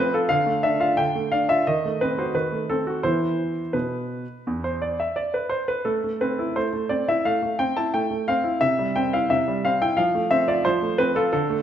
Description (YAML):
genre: classical-period piano sonatina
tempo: 88 BPM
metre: 4/4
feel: rubato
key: A minor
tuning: A4 = 441 Hz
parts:
  - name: clear baby grand piano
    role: solo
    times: 0.0-11.6 s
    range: E2 to A5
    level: -21 LUFS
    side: equal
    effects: none
room: wet recital hall reverb, RT60 1.4 s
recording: none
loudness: -21 LUFS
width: side -9 dB against mid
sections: 0.0-11.6 A section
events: none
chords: 0.3 Dm; 1.7 D#dim7; 3.0 E5; 5.9 Am; 8.6 C; 10.0 F